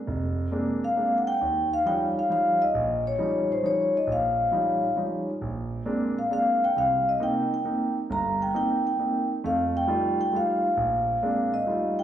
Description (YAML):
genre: jazz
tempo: 134 BPM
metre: 3/4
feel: swing 68% on 8ths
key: unclear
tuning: A4 = 440 Hz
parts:
  - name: warm concert grand piano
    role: accompaniment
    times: 0.1-12.0 s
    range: F1 to F4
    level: -28 LUFS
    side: right 1 dB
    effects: none
  - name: vibraphone with soft mallets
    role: melody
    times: 0.8-12.0 s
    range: C5 to Bb5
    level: -24 LUFS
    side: left 1 dB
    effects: none
room: wet recital hall reverb, RT60 1.4 s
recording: recorded in a church or concert hall, nothing above 10.8 kHz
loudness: -23 LUFS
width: side -10 dB against mid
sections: 0.0-12.0 A section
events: none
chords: 0.0 Bb9; 1.4 Eb9; 5.4 Bb9; 6.8 Cm7; 9.4 F9; 10.8 Bb9